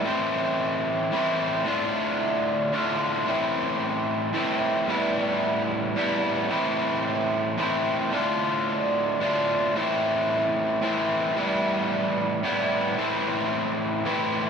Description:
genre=rock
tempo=111 BPM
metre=3/4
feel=straight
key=A minor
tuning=A4 = 437 Hz
part: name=overdriven semi-hollow guitar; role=solo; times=0.0-14.5 s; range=A2 to F4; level=-23 LUFS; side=equal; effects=spring reverb
room=wet large studio reverb, RT60 1.1 s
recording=nothing above 10.8 kHz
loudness=-23 LUFS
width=side -6 dB against mid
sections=0.0-3.3 A section; 3.3-14.5 B section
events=none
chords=0.0 Am; 1.6 Dm/A; 3.3 Am; 4.9 Em/A; 6.5 Am; 8.1 Dm/A; 9.7 Am; 11.4 Em/A; 13.0 Am

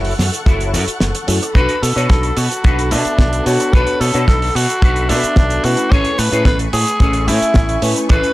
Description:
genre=nu-disco, nu disco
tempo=110 BPM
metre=4/4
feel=straight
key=unclear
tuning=A4 = 443 Hz
part: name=clear studio string section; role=sustained chords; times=0.0-8.3 s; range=A3 to F#6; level=-27 LUFS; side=left 2 dB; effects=sidechain pumping
part: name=electric guitar with an envelope filter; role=riff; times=0.0-8.3 s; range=C#4 to C#5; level=-23 LUFS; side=left 2 dB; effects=ensemble chorus
part: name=modern bright fingered electric bass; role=bass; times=0.0-8.2 s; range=F#1 to B2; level=-18 LUFS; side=equal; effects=none
part: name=damped 70s drum kit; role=drums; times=0.0-8.3 s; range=hi-hat, shaker, snare drum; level=-22 LUFS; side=right 2 dB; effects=studio ambience
part: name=kick drum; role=drums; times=0.5-8.2 s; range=none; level=-12 LUFS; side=equal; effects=studio ambience
part: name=tine electric piano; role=accompaniment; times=1.3-8.3 s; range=A3 to G#5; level=-21 LUFS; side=equal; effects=phaser
part: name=raspy tenor saxophone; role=melody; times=1.6-8.3 s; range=D4 to C#5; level=-19 LUFS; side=equal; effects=tape echo
room=studio reverb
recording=dry, gritty hardware recording, cassette tape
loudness=-12 LUFS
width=side -17 dB against mid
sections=0.0-8.3 A section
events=kick drops out 1.0-1.6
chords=0.0 F#m7; 1.6 Bm7; 5.9 Amaj9

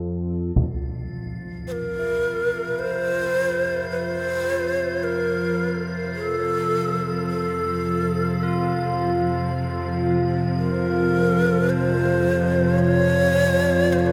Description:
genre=dark ambient drone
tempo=54 BPM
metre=4/4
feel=straight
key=F major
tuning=A4 = 440 Hz
part: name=tubular bells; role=arpeggios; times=0.0-14.1 s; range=E4 to A4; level=-37 LUFS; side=equal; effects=shimmer reverb, tape echo
part: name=analog drone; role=drone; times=0.0-14.1 s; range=F2 to F3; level=-29 LUFS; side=equal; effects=chorus
part: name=dark chamber cello section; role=sustained chords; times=0.6-14.1 s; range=C3 to F3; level=-28 LUFS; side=equal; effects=none
part: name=taiko ensemble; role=percussion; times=0.6-0.8 s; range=none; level=-30 LUFS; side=equal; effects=low-pass filter on perc
part: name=icy glass pad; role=texture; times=1.1-14.1 s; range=F4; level=-36 LUFS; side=equal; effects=chorus, built-in reverb, shimmer reverb
part: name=breathy bright long shakuhachi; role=melody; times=1.7-14.1 s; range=A4 to Db5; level=-26 LUFS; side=equal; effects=shimmer reverb, tape echo
room=wet cathedral reverb, RT60 5.8 s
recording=none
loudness=-22 LUFS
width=mono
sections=0.6-14.1 A section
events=fade-in on synth drone 0.6-14.1; fade-in on cello section 0.6-14.1; fade-out on ambient pad 0.6-14.1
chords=0.0 A5/F; 0.6 F

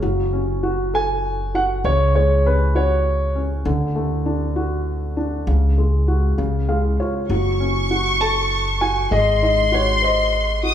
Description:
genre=pop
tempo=66 BPM (dotted quarters)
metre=6/8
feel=straight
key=F# minor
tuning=A4 = 440 Hz
part: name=felt-muted upright piano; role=accompaniment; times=0.0-10.7 s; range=C#3 to E#5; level=-23 LUFS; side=left 1 dB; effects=none
part: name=upright bass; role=bass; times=0.0-10.7 s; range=F#1 to D2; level=-21 LUFS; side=equal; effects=none
part: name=warm concert grand piano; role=melody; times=0.9-3.4, 8.2-10.7 s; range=B4 to A5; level=-20 LUFS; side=equal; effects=none
part: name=warm studio violin section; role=second line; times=7.3-10.7 s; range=B#5 to D#6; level=-21 LUFS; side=left 1 dB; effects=none
room=wet large studio reverb, RT60 1.2 s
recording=band playing live in one room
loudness=-17 LUFS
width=side -10 dB against mid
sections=0.0-10.7 A section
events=felt piano fill 6.4-7.3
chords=0.0 F#m; 1.8 C#sus4; 3.7 D; 5.5 C#sus4; 6.4 C#; 7.3 F#m; 9.1 G#7

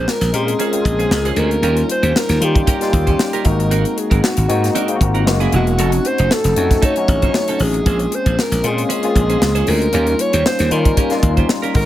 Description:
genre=polished 1980s jazz-funk pop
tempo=116 BPM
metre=4/4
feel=swing 54% on 16ths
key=Bb minor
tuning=A4 = 440 Hz
part: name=breathy alto saxophone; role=melody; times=0.0-11.9 s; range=Eb4 to Db5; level=-20 LUFS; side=equal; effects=ping-pong delay
part: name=barky tine electric piano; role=accompaniment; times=0.0-11.9 s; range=Gb3 to Bb4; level=-21 LUFS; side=left 4 dB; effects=overdrive, ensemble chorus
part: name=clean electric guitar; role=riff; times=0.0-11.8 s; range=Bb3 to C5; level=-25 LUFS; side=right 7 dB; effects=lush chorus
part: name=slap bass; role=bass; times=0.0-11.9 s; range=Fb1 to Eb3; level=-17 LUFS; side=equal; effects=none
part: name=tight funk drum kit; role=drums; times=0.1-11.9 s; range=hi-hat, kick drum, snare drum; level=-19 LUFS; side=equal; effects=none
room=studio reverb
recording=none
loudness=-14 LUFS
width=side -13 dB against mid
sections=0.0-11.9 A section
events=none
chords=0.0 Bbm9; 1.6 Eb7; 3.5 Ab9; 5.3 Gb9; 5.8 F7b9b13; 7.9 Bbm9; 9.9 Eb7

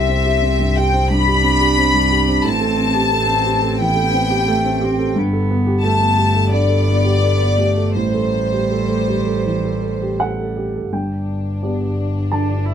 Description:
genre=neoclassical piano and strings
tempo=78-90 BPM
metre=4/4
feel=rubato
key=unclear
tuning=A4 = 440 Hz
part: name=warm studio violin section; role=melody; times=0.0-12.7 s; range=D4 to B5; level=-19 LUFS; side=left 2 dB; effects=none
part: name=warm cello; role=second line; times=0.0-12.7 s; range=G3 to E4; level=-24 LUFS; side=right 6 dB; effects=none
part: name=dark baby grand piano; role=accompaniment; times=0.0-12.7 s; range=C2 to A5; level=-20 LUFS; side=right 1 dB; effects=none
part: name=warm double bass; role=bass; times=0.0-12.7 s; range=G1 to C2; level=-20 LUFS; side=left 1 dB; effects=none
room=light reverb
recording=none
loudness=-15 LUFS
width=side -8 dB against mid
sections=0.0-10.9 A section; 10.9-12.7 B section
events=none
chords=0.0 C; 2.4 Am7; 5.2 Gadd9; 8.0 Am7; 10.9 G

